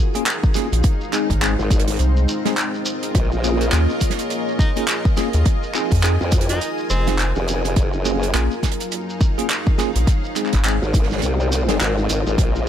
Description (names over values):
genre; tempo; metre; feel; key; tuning
glitch hop; 104 BPM; 4/4; swing 60% on 16ths; unclear; A4 = 440 Hz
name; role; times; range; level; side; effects
dark analog pad; sustained chords; 0.0-12.7 s; Gb3 to Db5; -30 LUFS; left 1 dB; chorus, sidechain pumping
granular cloud pad; texture; 0.0-12.7 s; C4 to Ab5; -28 LUFS; left 1 dB; built-in reverb, sidechain pumping
bell-like tine electric piano; stabs; 0.1-11.8 s; Ab3 to Ab4; -26 LUFS; equal; medium stereo tremolo, vintage 12-bit sampler grit, sidechain pumping, tape echo
shekere; percussion; 0.1-12.6 s; none; -31 LUFS; right 2 dB; none
damped 70s drum kit; drums; 0.2-12.5 s; handclaps, hi-hat, snare drum; -24 LUFS; right 2 dB; none
electronic kick drum; drums; 0.4-12.5 s; none; -18 LUFS; equal; none
rubbery square bass; bass; 0.7-10.8 s; F1 to F2; -18 LUFS; equal; none
formant-sweep wobble bass; bass; 1.6-12.7 s; F1 to F2; -20 LUFS; equal; chorus, overdrive
edgy tenor saxophone; melody; 4.6-7.4 s; C4 to Eb4; -30 LUFS; equal; tape echo
room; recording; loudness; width
studio ambience; none; -17 LUFS; side -10 dB against mid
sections
0.0-12.7 A section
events
none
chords
0.0 Gbmaj9; 0.8 Ab; 3.1 Bbm7; 5.5 Fm7; 7.8 Gbmaj9; 10.1 Ab